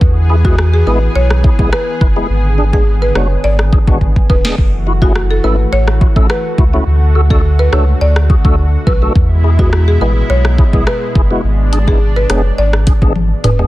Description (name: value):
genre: dancehall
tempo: 105 BPM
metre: 4/4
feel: straight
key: unclear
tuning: A4 = 438 Hz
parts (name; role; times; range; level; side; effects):
- lush unison pad; sustained chords; 0.0-13.7 s; B2 to G#4; -22 LUFS; equal; chorus, sidechain pumping
- warm sub bass; bass; 0.0-13.7 s; E1 to E2; -12 LUFS; equal; none
- afro-pop drum kit; drums; 0.0-13.7 s; hi-hat, kick drum, rim click, snare drum, toms; -12 LUFS; equal; vintage 12-bit sampler grit, soft clipping on snare
- tonewheel organ; accompaniment; 0.3-13.7 s; G#3 to B4; -20 LUFS; left 1 dB; overdrive, chorus vibrato, slow rotary speaker, sidechain pumping
- buzzing marimba with medium mallets; melody; 0.4-13.5 s; F#4 to D5; -20 LUFS; equal; tape echo
room: digital ambience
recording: dense, heavily limited modern master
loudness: -9 LUFS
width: side -17 dB against mid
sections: 0.0-13.7 A section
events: drum fill 4.0-4.6, 13.2-13.7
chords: 0.0 E; 2.3 G#dim; 4.6 F#m7; 6.9 D; 9.2 E; 11.4 G#dim